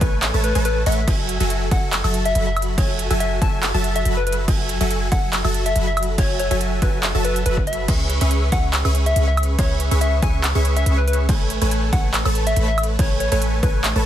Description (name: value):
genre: future bass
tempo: 141 BPM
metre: 4/4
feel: swing 54% on 16ths, half-time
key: F# minor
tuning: A4 = 437 Hz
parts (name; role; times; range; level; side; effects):
- soft struck synth lead; melody; 0.0-13.8 s; B4 to A5; -26 LUFS; left 3 dB; chorus, sidechain pumping, ping-pong delay
- supersaw stab; riff; 0.0-14.1 s; F#3 to C#6; -24 LUFS; right 1 dB; sidechain pumping
- warm 808-style bass; bass; 0.0-14.1 s; F#1 to C#2; -21 LUFS; equal; sidechain pumping
- big-room dance drum kit; drums; 0.0-13.9 s; crash cymbal, handclaps, hi-hat, woodblock; -26 LUFS; right 2 dB; none
- electronic kick drum; drums; 0.0-13.7 s; none; -20 LUFS; equal; none
room: digital ambience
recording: dense, heavily limited modern master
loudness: -17 LUFS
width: side -11 dB against mid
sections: 0.0-14.1 A section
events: none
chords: 0.0 Amaj9; 1.1 F#m7; 7.9 C#m7; 11.3 Amaj9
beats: 0.23 0.65 | 1.08 1.50 1.93 2.35 | 2.78 3.20 3.63 4.05 | 4.48 4.91 5.33 5.76 | 6.18 6.61 7.03 7.46 | 7.88 8.31 8.74 9.16 | 9.59 10.01 10.44 10.86 | 11.29 11.71 12.14 12.56 | 12.99 13.42 13.84